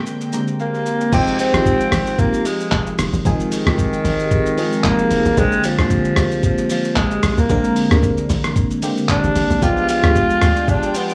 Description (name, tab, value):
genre	amapiano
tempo	113 BPM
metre	4/4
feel	swing 55% on 16ths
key	F dorian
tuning	A4 = 440 Hz
part	barking FM electric piano	accompaniment	0.0-11.1 s	D3 to Bb5	-23 LUFS	equal	phaser
part	warm studio string section	sustained chords	0.0-1.1, 9.6-11.1 s	D3 to G5	-31 LUFS	equal	none
part	dusty soul sampler-style drum kit	drums	0.1-11.1 s	crash cymbal, handclaps, hi-hat, kick drum, rim click, shaker	-24 LUFS	equal	overdrive
part	breathy alto saxophone	melody	0.6-11.1 s	Eb3 to F4	-22 LUFS	equal	tape echo
part	tight log drum bass	bass	1.1-10.7 s	F1 to D2	-23 LUFS	equal	none
room	light reverb, digital ambience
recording	worn, warbling old tape, cassette tape, warbly pitch drift, small room ambience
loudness	-17 LUFS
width	mono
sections	0.0-1.1 A section; 1.1-11.1 B section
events	filter sweep 0.0-1.1; FM electric piano fill 0.1-1.1; drop 1.1-11.1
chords	0.0 Bb13; 1.1 Fm9; 5.4 Bb13; 9.6 G7b9/B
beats	0.06 0.59 | 1.12 1.66 2.19 2.72 | 3.25 3.78 4.31 4.84 | 5.37 5.90 6.43 6.97 | 7.50 8.03 8.56 9.09 | 9.62 10.15 10.68